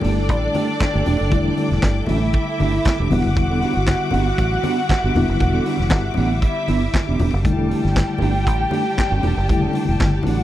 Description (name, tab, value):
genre	disco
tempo	118 BPM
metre	4/4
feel	straight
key	unclear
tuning	A4 = 440 Hz
part	dark studio violin section	second line	0.0-10.4 s	D4 to G5	-24 LUFS	right 1 dB	slapback echo
part	mellow electric guitar	accompaniment	0.0-10.4 s	A3 to A4	-25 LUFS	right 6 dB	none
part	mellow reed electric piano	accompaniment	0.0-10.4 s	C#3 to E4	-24 LUFS	left 4 dB	fast tremolo
part	clear studio string section	sustained chords	0.0-10.4 s	G3 to D6	-31 LUFS	left 4 dB	none
part	fingered electric bass	bass	0.0-10.4 s	E1 to A1	-21 LUFS	equal	none
part	vintage drum kit	drums	0.0-10.4 s	handclaps, hi-hat, kick drum, snare drum	-21 LUFS	equal	none
part	congas	percussion	0.0-10.4 s	none	-27 LUFS	left 3 dB	none
room	light reverb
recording	dry, close 1970s-style studio recording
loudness	-16 LUFS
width	side -13 dB against mid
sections	0.0-10.4 A section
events	none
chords	0.0 A7sus4; 3.1 Em7; 7.4 A7sus4/E